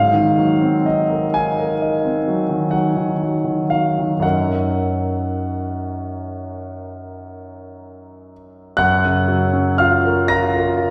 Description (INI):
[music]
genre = classical, impressionist solo piano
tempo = 37-45 BPM (dotted quarters)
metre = 9/8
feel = rubato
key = Gb major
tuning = A4 = 442 Hz
[part]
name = clear concert grand piano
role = solo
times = 0.0-10.9 s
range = Gb2 to Bb6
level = -19 LUFS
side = equal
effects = none
[sound]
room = wet scoring stage reverb, RT60 2.0 s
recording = heard from further back in the room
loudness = -18 LUFS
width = mono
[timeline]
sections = 0.0-8.8 A section; 8.8-10.9 A section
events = none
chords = 0.0 Ab9; 4.2 Gb6; 8.8 Gbmaj7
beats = 1.35 2.72 | 4.22 5.78 7.29 | 8.79 10.31